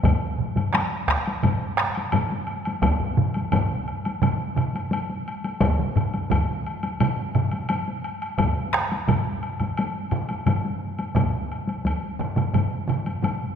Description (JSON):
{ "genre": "japanese traditional, taiko drum ensemble", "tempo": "86 BPM", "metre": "4/4", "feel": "straight", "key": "none", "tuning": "none", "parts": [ { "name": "solo taiko drums", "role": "percussion", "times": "0.0-13.4 s", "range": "none", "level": "-29 LUFS", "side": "left 2 dB", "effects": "none" }, { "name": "taiko ensemble", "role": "percussion", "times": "0.0-13.4 s", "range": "none", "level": "-28 LUFS", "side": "left 4 dB", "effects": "none" }, { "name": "taiko ensemble", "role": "percussion", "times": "0.0-13.4 s", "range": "none", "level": "-27 LUFS", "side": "right 5 dB", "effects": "none" }, { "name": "taiko ensemble", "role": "percussion", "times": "0.0-12.0 s", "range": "none", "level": "-27 LUFS", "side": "equal", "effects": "none" }, { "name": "woodblock", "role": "percussion", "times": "0.1-13.4 s", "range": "none", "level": "-31 LUFS", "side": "left 2 dB", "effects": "none" } ], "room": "wet concert hall reverb, RT60 2.1 s", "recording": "minimal, uncompressed stereo recording", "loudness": "-22 LUFS", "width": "side -8 dB against mid", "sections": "0.0-13.6 A section", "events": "none", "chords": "none", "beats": "| 0.04 0.74 1.44 2.13 | 2.83 3.53 4.22 4.92 | 5.62 6.31 7.00 7.70 | 8.39 9.08 9.78 10.47 | 11.16 11.85 12.54 13.23" }